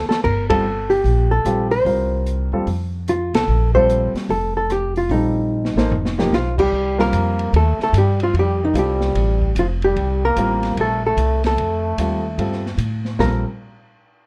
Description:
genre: jazz, small-group swing and bop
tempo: 148 BPM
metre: 4/4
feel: swing 64% on 8ths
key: unclear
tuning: A4 = 440 Hz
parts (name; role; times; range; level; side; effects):
- hollow-body jazz guitar; melody; 0.0-13.4 s; Eb4 to C5; -22 LUFS; equal; none
- upright bass; bass; 0.0-13.4 s; F1 to A2; -23 LUFS; equal; none
- open jazz drum kit; drums; 0.1-13.3 s; crash cymbal, hi-hat, kick drum, ride cymbal, rim click, snare drum, toms; -29 LUFS; equal; none
- warm baby grand piano; accompaniment; 0.5-13.4 s; F3 to C5; -26 LUFS; equal; none
- clear trombone; second line; 6.3-13.4 s; Eb3 to Bb3; -28 LUFS; equal; none
room: light reverb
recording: none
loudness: -19 LUFS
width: mono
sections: 0.0-6.7 A section; 6.7-13.2 B section; 13.2-14.3 C section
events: drum fill 0.0, 5.5-6.3; band accent 0.4, 3.3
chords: 0.2 Gm9; 1.9 Cm7; 2.7 F5; 3.5 Bbsus2; 6.7 Cm7; 8.3 F; 10.0 C5; 11.6 F7; 13.2 Bbsus2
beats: | 0.24 0.65 1.05 1.46 | 1.86 2.27 2.67 3.08 | 3.48 3.89 4.29 4.70 | 5.11 5.51 5.92 6.32 | 6.72 7.13 7.54 7.94 | 8.34 8.75 9.15 9.56 | 9.96 10.37 10.77 11.18 | 11.58 11.98 12.39 12.79 | 13.20

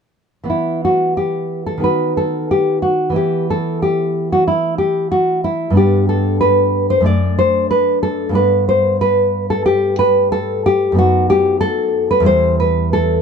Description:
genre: classical, baroque-style dance for nylon-string guitar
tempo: 92 BPM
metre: 4/4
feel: rubato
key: E minor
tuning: A4 = 440 Hz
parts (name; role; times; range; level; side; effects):
- nylon-string guitar; solo; 0.4-13.2 s; E2 to D5; -13 LUFS; equal; none
room: light reverb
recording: none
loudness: -13 LUFS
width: side -6 dB against mid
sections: 0.5-13.2 A section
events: none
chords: 0.5 E5; 5.8 G; 11.0 B/F#; 12.3 Em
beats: | 0.50 1.17 1.84 2.50 | 3.17 3.83 4.49 5.14 | 5.78 6.42 7.07 7.71 | 8.36 9.01 9.65 10.31 | 10.96 11.61 12.26 12.93

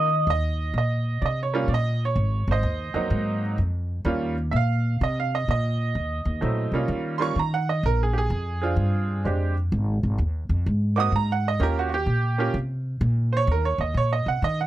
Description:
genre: electric blues shuffle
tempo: 127 BPM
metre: 4/4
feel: swing 67% on 8ths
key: Eb mixolydian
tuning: A4 = 439 Hz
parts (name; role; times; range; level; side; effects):
- bright upright piano; accompaniment; 0.0-14.7 s; Gb3 to Eb6; -26 LUFS; right 4 dB; none
- upright bass; bass; 0.0-14.7 s; Ab1 to Eb3; -24 LUFS; equal; none
room: little or no reverb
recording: none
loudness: -22 LUFS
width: side -14 dB against mid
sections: 0.3-14.7 A section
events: none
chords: 0.3 Eb7(no3); 2.2 Ab9; 4.1 Eb9; 7.8 Bb9; 9.7 Ab7sus2; 11.6 Eb9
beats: | 0.28 0.75 1.23 1.70 | 2.17 2.64 3.12 3.59 | 4.06 4.53 5.00 5.48 | 5.95 6.42 6.89 7.36 | 7.84 8.31 8.78 9.25 | 9.72 10.19 10.66 11.13 | 11.61 12.08 12.55 13.02 | 13.49 13.96 14.43

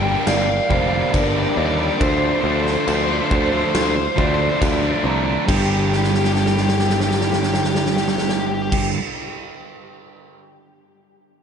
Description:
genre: post-rock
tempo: 69 BPM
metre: 4/4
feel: straight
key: G minor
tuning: A4 = 440 Hz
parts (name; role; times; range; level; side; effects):
- crunchy overdriven guitar; melody; 0.0-8.9 s; G4 to G5; -25 LUFS; left 4 dB; digital delay
- clear studio string section; sustained chords; 0.0-8.9 s; F4 to G5; -32 LUFS; left 1 dB; none
- overdriven electric guitar; riff; 0.0-9.0 s; G2 to D4; -21 LUFS; right 2 dB; spring reverb
- picked electric bass; bass; 0.0-8.9 s; F1 to Eb2; -23 LUFS; equal; none
- vibraphone with medium hard mallets; arpeggios; 0.3-8.9 s; G4 to Bb5; -27 LUFS; right 3 dB; digital delay
- huge arena drum kit; drums; 0.3-10.4 s; crash cymbal, kick drum, snare drum; -23 LUFS; equal; none
room: light reverb, small room ambience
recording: nothing above 10.4 kHz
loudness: -16 LUFS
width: side -7 dB against mid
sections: 0.0-5.5 A section; 5.5-8.9 B section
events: drum fill 5.9-8.7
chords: 0.0 Gm7; 2.0 Dm7; 5.5 Gm7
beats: 0.27 1.14 | 2.01 2.88 3.74 4.61 | 5.48 6.34 7.21 8.07

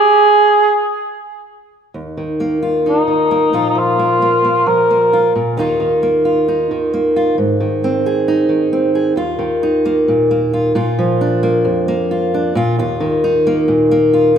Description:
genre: folk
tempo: 133 BPM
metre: 4/4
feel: straight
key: unclear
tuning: A4 = 440 Hz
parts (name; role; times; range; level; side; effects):
- mellow cor anglais; melody; 0.0-5.3 s; Eb4 to Bb4; -12 LUFS; right 1 dB; digital delay
- fingerpicked steel-string acoustic guitar; accompaniment; 1.9-14.4 s; Eb2 to Ab4; -13 LUFS; equal; none
room: wet scoring stage reverb, RT60 1.6 s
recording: none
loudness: -12 LUFS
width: side -8 dB against mid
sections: 0.0-2.0 A section; 2.0-9.2 B section; 9.2-14.4 C section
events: build-up 9.2-14.4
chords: 0.0 N.C.; 2.0 Ebsus2; 3.5 Bb5; 5.6 Ebsus2; 7.4 Ab; 9.2 Ebsus2; 10.8 Bb; 12.8 Ebsus2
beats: | 0.16 0.61 1.06 1.51 | 1.96 2.41 2.86 3.31 | 3.76 4.21 4.66 5.11 | 5.56 6.01 6.47 6.92 | 7.37 7.82 8.27 8.72 | 9.17 9.62 10.08 10.53 | 10.98 11.43 11.88 12.33 | 12.78 13.23 13.68 14.13

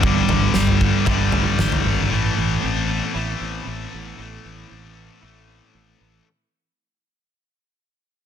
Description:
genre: quiet-loud alternative rock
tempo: 115 BPM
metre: 4/4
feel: straight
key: unclear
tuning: A4 = 440 Hz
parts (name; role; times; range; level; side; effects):
- twelve-string electric guitar; arpeggios; 0.0-6.3 s; G2 to E4; -25 LUFS; right 13 dB; none
- scooped high-gain guitar; riff; 0.0-6.3 s; G2 to A3; -23 LUFS; left 8 dB; distortion
- fuzz fingered electric bass; bass; 0.0-6.2 s; G1 to A1; -25 LUFS; equal; overdrive
- huge arena drum kit; drums; 0.0-1.8 s; kick drum, snare drum, toms; -21 LUFS; left 1 dB; none
room: light reverb, studio ambience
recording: dense, heavily limited modern master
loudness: -17 LUFS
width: side -9 dB against mid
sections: 0.0-6.3 A section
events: fade-out 0.0-6.3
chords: 0.0 G6; 2.1 Amadd9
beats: | 0.03 0.54 1.06 1.58 | 2.10 2.62 3.14 3.66 | 4.18 4.70 5.22 5.74

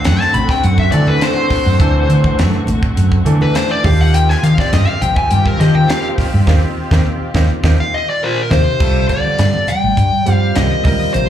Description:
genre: electric jazz fusion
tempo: 103 BPM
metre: 4/4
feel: straight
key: unclear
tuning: A4 = 440 Hz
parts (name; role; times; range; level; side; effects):
- dark smooth lead guitar; melody; 0.0-11.3 s; Bb4 to B5; -17 LUFS; left 4 dB; overdrive, slapback echo, tape echo
- clear baby grand piano; accompaniment; 0.0-11.3 s; E3 to Bb4; -22 LUFS; right 5 dB; slapback echo
- muted symphonic string section; sustained chords; 0.0-8.8 s; D3 to G4; -23 LUFS; equal; none
- crisp fusion drum kit; drums; 0.0-11.3 s; crash cymbal, hi-hat, kick drum, snare drum; -19 LUFS; right 1 dB; none
- woody fretless electric bass; bass; 0.1-11.3 s; A1 to Eb3; -13 LUFS; equal; none
- congas; percussion; 0.3-11.1 s; none; -23 LUFS; left 1 dB; slapback echo
- dark bass clarinet; second line; 8.2-11.3 s; Bb2 to G3; -22 LUFS; right 5 dB; slapback echo
room: small room ambience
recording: live gig heard through the venue's PA, club reverb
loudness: -11 LUFS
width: side -10 dB against mid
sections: 0.0-8.8 A section; 8.8-11.3 B section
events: lead electric guitar solo 0.0-8.8; band accent 6.5-8.8; drum fill 7.6-8.8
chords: 0.0 D7; 3.8 Eb69; 8.8 Csus2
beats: 0.05 0.64 1.22 | 1.80 2.39 2.97 3.56 | 4.14 4.72 5.31 5.89 | 6.47 7.06 7.64 8.22 | 8.80 9.39 9.97 10.55 | 11.14

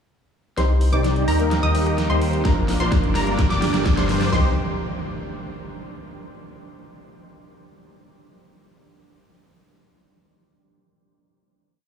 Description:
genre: EDM, festival progressive house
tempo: 128 BPM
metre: 4/4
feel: straight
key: C minor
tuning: A4 = 439 Hz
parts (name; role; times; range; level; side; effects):
- dark concert grand piano; accompaniment; 0.6-4.5 s; F3 to C5; -28 LUFS; left 3 dB; sidechain pumping, tape echo
- lush unison pad; sustained chords; 0.9-4.5 s; Eb4 to D6; -32 LUFS; right 1 dB; chorus, phaser, sidechain pumping
- wide unison pluck; arpeggios; 0.6-4.5 s; Bb5 to Eb6; -29 LUFS; left 1 dB; sidechain pumping, tape echo
- dense compressed supersaw; riff; 0.6-4.5 s; D4 to Eb5; -28 LUFS; right 2 dB; sidechain pumping, low-pass filter, tape echo
- fat analog bass; bass; 0.6-4.5 s; G1 to G2; -22 LUFS; left 1 dB; sidechain pumping
- big-room dance drum kit; drums; 0.6-4.3 s; hi-hat, rim click, snare drum; -29 LUFS; right 2 dB; overdrive
- riser and impact; sound effects; 2.7-6.2 s; none; -32 LUFS; right 1 dB; none
- big-room dance drum kit; drums; 2.5-4.4 s; kick drum, snare drum, toms; -21 LUFS; equal; none
room: light reverb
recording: played on a big sound system in a bare room, stone room reverb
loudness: -18 LUFS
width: side -7 dB against mid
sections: 0.6-4.3 build; 4.3-6.2 final chord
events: build-up 0.6-4.3; drum fill 0.6-4.3; filter sweep on supersaw synth 0.6-4.3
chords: 0.6 Cm; 1.5 Eb; 2.5 Bb; 3.4 Gm; 4.3 Cm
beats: | 0.58 1.04 1.51 1.98 | 2.45 2.92 3.39 3.86 | 4.33 4.79 5.26 5.73

